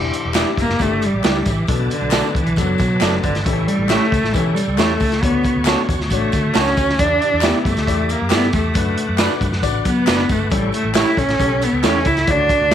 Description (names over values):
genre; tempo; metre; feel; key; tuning
uptempo 1960s-style soul; 136 BPM; 4/4; straight; E dorian; A4 = 440 Hz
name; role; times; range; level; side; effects
clear baby grand piano; accompaniment; 0.0-12.7 s; A2 to D5; -26 LUFS; left 13 dB; none
bright tonewheel organ; sustained chords; 0.0-12.7 s; F#4 to D6; -28 LUFS; equal; chorus vibrato, fast rotary speaker
vintage muted fingered electric bass; bass; 0.0-12.7 s; E1 to F#3; -24 LUFS; equal; none
crunchy breakbeat drum kit; drums; 0.1-12.7 s; hi-hat, kick drum, snare drum; -21 LUFS; equal; none
electric guitar through a small old amp; stabs; 0.3-12.7 s; A3 to D5; -22 LUFS; right 11 dB; none
handclaps and tambourine; percussion; 0.3-12.6 s; none; -29 LUFS; left 4 dB; none
warm cello; melody; 0.6-12.7 s; B2 to E4; -18 LUFS; equal; slapback echo
room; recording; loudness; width
light reverb; 1960s-style stereo with parts hard left and right; -15 LUFS; side -9 dB against mid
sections
0.0-12.7 A section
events
cello solo 0.0-12.7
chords
0.0 Em7; 1.7 Bm7; 3.5 A7; 5.2 Dmaj7; 7.0 Em7; 8.8 D6/F#; 10.5 A7